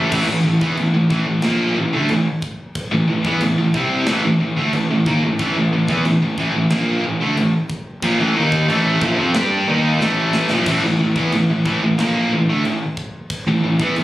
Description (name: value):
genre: heavy metal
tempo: 91 BPM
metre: 4/4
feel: straight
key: A minor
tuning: A4 = 439 Hz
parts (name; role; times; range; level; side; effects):
- distorted electric guitar; riff; 0.0-14.0 s; A2 to G4; -19 LUFS; right 3 dB; overdrive
- scooped high-gain guitar; riff; 0.0-14.0 s; A2 to G4; -21 LUFS; left 4 dB; distortion
- fuzz fingered electric bass; bass; 0.0-14.0 s; A1 to G2; -21 LUFS; equal; overdrive
- tight metal drum kit; drums; 0.1-14.0 s; china cymbal, crash cymbal, kick drum, snare drum; -28 LUFS; equal; none
room: light reverb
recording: recorded on a phone in the room, studio reverb, compression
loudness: -15 LUFS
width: side -15 dB against mid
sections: 0.1-14.0 A section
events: drum fill 10.0-10.7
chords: 0.1 Am